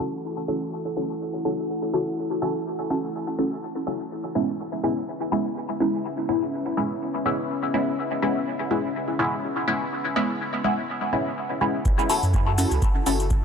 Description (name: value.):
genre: dub techno.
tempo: 124 BPM.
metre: 4/4.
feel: swing 55% on 16ths.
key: F# minor.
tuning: A4 = 440 Hz.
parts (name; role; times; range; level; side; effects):
deep dark ambient pad; sustained chords; 0.0-13.4 s; C#4 to F#5; -32 LUFS; left 1 dB; chorus, built-in reverb, sidechain pumping.
filtered dub chord stab; stabs; 0.0-13.3 s; G#3 to A4; -24 LUFS; equal; phaser, sidechain pumping, dub echo.
warm sub bass; bass; 11.9-13.4 s; F#1 to F#2; -25 LUFS; right 1 dB; transformer saturation, sidechain pumping.
electronic cabasa and hi-hat; drums; 11.9-13.4 s; none; -30 LUFS; equal; none.
electronic kick drum; drums; 11.9-13.4 s; none; -22 LUFS; equal; none.
room: moderate huge ambient reverb, RT60 4.7 s.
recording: dry, gritty hardware recording, low-pass filter.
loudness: -23 LUFS.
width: side -6 dB against mid.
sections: 0.0-11.9 A section; 11.9-13.4 B section.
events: filter sweep 0.0-11.9.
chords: 0.0 F#m7; 4.1 C#m7; 11.9 F#m7.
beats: | 0.24 0.72 1.21 1.69 | 2.18 2.66 3.15 3.63 | 4.11 4.60 5.08 5.56 | 6.05 6.53 7.02 7.50 | 7.98 8.47 8.95 9.44 | 9.92 10.40 10.89 11.37 | 11.85 12.34 12.82 13.31.